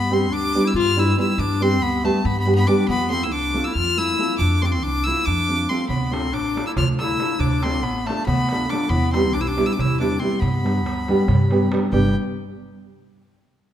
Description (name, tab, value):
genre	balkan folk, Balkan wedding band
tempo	279 BPM (eighths)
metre	7/8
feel	straight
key	G mixolydian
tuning	A4 = 440 Hz
part	bright fiddle	melody	0.0-12.1 s	G5 to F6	-25 LUFS	equal	none
part	clear clarinet	second line	0.0-12.1 s	A3 to G4	-25 LUFS	left 4 dB	none
part	upright bass	bass	0.0-12.1 s	G1 to G2	-24 LUFS	equal	none
part	nylon-string guitar	accompaniment	0.1-12.1 s	G3 to A4	-23 LUFS	right 1 dB	none
part	darbuka	percussion	5.9-12.1 s	none	-26 LUFS	right 3 dB	none
room	moderate concert hall reverb, RT60 1.8 s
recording	minimal, uncompressed stereo recording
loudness	-18 LUFS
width	side -10 dB against mid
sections	0.0-11.9 A section; 11.9-13.4 B section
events	none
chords	0.0 G; 2.9 F; 5.9 Dm; 8.9 Em; 10.4 G